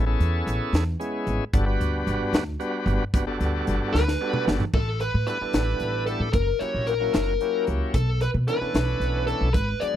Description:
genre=electric jazz fusion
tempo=75 BPM (dotted quarters)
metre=6/8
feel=straight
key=A mixolydian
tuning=A4 = 441 Hz
part: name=bright tonewheel organ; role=accompaniment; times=0.0-10.0 s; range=E3 to B4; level=-28 LUFS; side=equal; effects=slow rotary speaker, overdrive
part: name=upright bass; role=bass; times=0.0-9.8 s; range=F#1 to B2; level=-25 LUFS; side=equal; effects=none
part: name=crisp fusion drum kit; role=drums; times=0.2-9.9 s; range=crash cymbal, hi-hat, kick drum, snare drum, toms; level=-26 LUFS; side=equal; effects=none
part: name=dark smooth lead guitar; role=melody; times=3.9-10.0 s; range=A4 to D5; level=-26 LUFS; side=left 2 dB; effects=overdrive, slapback echo
room=little or no reverb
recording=none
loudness=-22 LUFS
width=side -11 dB against mid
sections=0.0-4.7 A section; 4.7-10.0 B section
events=drum fill 3.9-4.7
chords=0.0 Amaj9; 1.5 Gmaj9; 4.7 A9sus4; 6.3 F#7b9; 7.9 Bm11

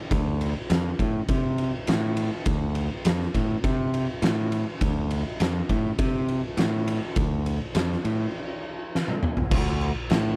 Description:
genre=stoner and doom metal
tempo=102 BPM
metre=4/4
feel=straight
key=D minor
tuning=A4 = 439 Hz
part: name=growling fingered electric bass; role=bass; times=0.1-10.4 s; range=D2 to C3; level=-28 LUFS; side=equal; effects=overdrive
part: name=oversized low-tuned drum kit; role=drums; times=0.1-10.2 s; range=crash cymbal, kick drum, ride cymbal, snare drum, toms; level=-29 LUFS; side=equal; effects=none
room=little or no reverb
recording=none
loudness=-26 LUFS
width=mono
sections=0.0-9.5 A section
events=drum fill 8.9-9.5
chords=none

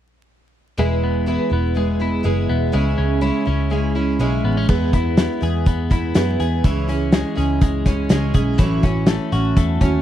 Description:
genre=jangly indie pop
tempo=123 BPM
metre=4/4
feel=straight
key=E major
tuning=A4 = 440 Hz
part: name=picked twelve-string acoustic guitar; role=accompaniment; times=0.8-10.0 s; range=A2 to E4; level=-22 LUFS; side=right 5 dB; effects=none
part: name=twelve-string electric guitar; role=arpeggios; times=0.8-10.0 s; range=E3 to G#4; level=-23 LUFS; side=left 5 dB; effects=none
part: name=vintage muted picked electric bass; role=bass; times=0.8-10.0 s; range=E1 to F#2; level=-21 LUFS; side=equal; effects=none
part: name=loose indie drum kit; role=drums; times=4.7-9.9 s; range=crash cymbal, hi-hat, kick drum, snare drum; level=-17 LUFS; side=equal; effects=none
room=little or no reverb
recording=vinyl crackle, faint mains hum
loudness=-16 LUFS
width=side -11 dB against mid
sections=0.8-4.7 A section; 4.7-10.0 B section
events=none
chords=0.8 E; 2.7 C#m; 4.7 E; 6.6 C#m; 8.6 A6

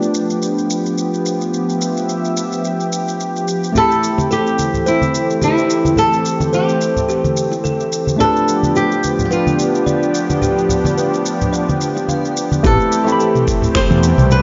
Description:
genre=sunset chillout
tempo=108 BPM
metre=4/4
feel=swing 56% on 16ths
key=A minor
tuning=A4 = 440 Hz
part: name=bright tine electric piano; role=accompaniment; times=0.0-14.4 s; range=A3 to B5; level=-23 LUFS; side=equal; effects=tape echo, slapback echo
part: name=lush unison pad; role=sustained chords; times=0.0-14.4 s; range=E3 to E5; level=-22 LUFS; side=equal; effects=chorus
part: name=smooth R&B drum kit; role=drums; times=0.0-14.4 s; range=finger snaps, shaker, toms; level=-28 LUFS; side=equal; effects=none
part: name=flamenco guitar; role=melody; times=3.8-14.4 s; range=E4 to C5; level=-21 LUFS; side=equal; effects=tape echo, slapback echo
part: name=kalimba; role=arpeggios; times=3.8-14.4 s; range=G4 to F5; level=-24 LUFS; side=equal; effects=tape echo, slapback echo
part: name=congas and bongos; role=percussion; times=3.8-13.9 s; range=none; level=-24 LUFS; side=equal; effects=none
part: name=fretless electric bass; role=bass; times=12.6-14.4 s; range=A1 to E2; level=-15 LUFS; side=equal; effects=tube saturation
part: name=electronic kick drum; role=drums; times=12.6-13.9 s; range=none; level=-22 LUFS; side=equal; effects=none
room=wet lush hall reverb, RT60 1.6 s, digital ambience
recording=big arena sound, nothing above 7.5 kHz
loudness=-16 LUFS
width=mono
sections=0.0-12.6 A section; 12.6-14.4 B section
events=filter sweep on analog synth pad 0.0-12.6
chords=0.0 G7; 3.8 Am7; 8.2 G7; 12.6 Am7

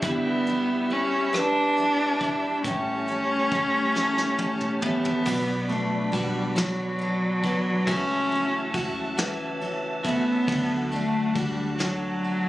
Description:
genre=six-eight pop ballad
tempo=46 BPM (dotted quarters)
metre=6/8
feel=straight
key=unclear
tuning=A4 = 440 Hz
part: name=warm cello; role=melody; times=0.0-12.5 s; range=F#3 to D4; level=-24 LUFS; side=equal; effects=none
part: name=picked steel-string acoustic guitar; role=accompaniment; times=0.0-12.5 s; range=A2 to B4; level=-30 LUFS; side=left 1 dB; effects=double-tracked left and right
part: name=tonewheel organ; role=sustained chords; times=0.0-12.5 s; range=F#4 to B5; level=-34 LUFS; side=equal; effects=chorus vibrato, stopped rotary speaker
part: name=clean electric guitar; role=arpeggios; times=0.0-12.5 s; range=A2 to B4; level=-34 LUFS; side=left 2 dB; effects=wide subtle chorus
part: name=vintage muted fingered electric bass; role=bass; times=0.0-12.5 s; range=G1 to D2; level=-36 LUFS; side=equal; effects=none
part: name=soft brush drum kit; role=drums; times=0.0-12.4 s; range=crash cymbal, hi-hat, kick drum, ride cymbal, rim click, snare drum, toms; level=-33 LUFS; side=equal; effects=none
room=light reverb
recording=recorded on a phone in the room, club reverb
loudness=-23 LUFS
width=side -16 dB against mid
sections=0.0-5.3 A section; 5.3-12.5 B section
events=drum fill 4.0-5.3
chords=0.0 G6; 2.6 A7; 5.3 Bm; 7.9 F#m7/C#; 10.5 D

